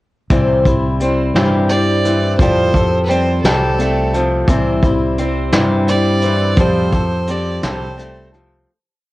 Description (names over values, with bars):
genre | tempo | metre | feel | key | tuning
folk rock and heartland rock | 57 BPM (dotted quarters) | 6/8 | straight | C major | A4 = 441 Hz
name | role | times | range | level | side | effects
picked steel-string acoustic guitar | accompaniment | 0.3-8.7 s | C3 to C5 | -18 LUFS | left 2 dB | cassette tape, plate reverb
electric guitar through a small old amp | riff | 0.3-8.7 s | C3 to G4 | -22 LUFS | right 1 dB | cassette tape
fingered electric bass | bass | 0.3-8.7 s | C2 to G2 | -18 LUFS | equal | none
soft brush drum kit | drums | 0.3-8.5 s | hi-hat, kick drum, snare drum | -18 LUFS | equal | cassette tape
clear fiddle | melody | 1.7-8.4 s | A4 to D5 | -20 LUFS | right 2 dB | cassette tape
room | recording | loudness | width
light reverb | home recording on cassette | -13 LUFS | side -18 dB against mid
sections
0.3-8.7 verse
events
fade-out 6.6-8.7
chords
0.3 C; 2.4 Fadd9; 4.5 C; 6.6 Fadd9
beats
| 0.31 1.35 | 2.40 3.45 | 4.50 5.54 | 6.59 7.64